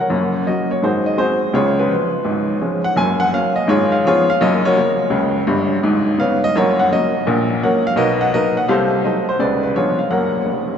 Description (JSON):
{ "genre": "jazz, stride piano", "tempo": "168 BPM", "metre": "4/4", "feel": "swing 65% on 8ths", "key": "F# major", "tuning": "A4 = 440 Hz", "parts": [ { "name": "clear upright piano", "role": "solo", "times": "0.0-10.8 s", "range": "E#1 to G#5", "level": "-15 LUFS", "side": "equal", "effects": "none" } ], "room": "wet cathedral reverb, RT60 6.2 s", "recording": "recorded in a church or concert hall, nothing above 8.0 kHz", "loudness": "-14 LUFS", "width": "side -8 dB against mid", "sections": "0.1-10.8 A section", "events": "upright piano fill 10.5-10.8", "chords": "0.1 F#; 0.8 G#7; 1.5 C#7; 3.0 F#; 3.7 C#7/G#; 4.4 F#; 5.8 C#5/G#; 6.5 F#; 7.3 F#/A#; 8.0 Bmaj7; 8.7 Cdim7; 9.4 C#7b9; 10.1 F#" }